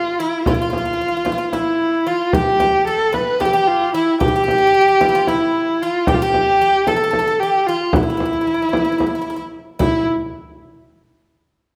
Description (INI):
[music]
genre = Turkish makam ensemble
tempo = 225 BPM (eighths)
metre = 7/8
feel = straight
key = E makam kurdi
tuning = A4 = 440 Hz
[part]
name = warm kamancheh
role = melody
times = 0.0-10.0 s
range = E4 to B4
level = -18 LUFS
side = equal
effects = none
[part]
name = Greek bouzouki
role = second line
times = 0.0-10.0 s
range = E4 to B4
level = -27 LUFS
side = equal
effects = none
[part]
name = frame drum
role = percussion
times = 0.5-10.0 s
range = none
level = -24 LUFS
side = equal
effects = none
[sound]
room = wet recital hall reverb, RT60 1.7 s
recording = recorded in a church or concert hall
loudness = -17 LUFS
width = mono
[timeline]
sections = 0.0-9.8 A section; 9.8-11.7 B section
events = none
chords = none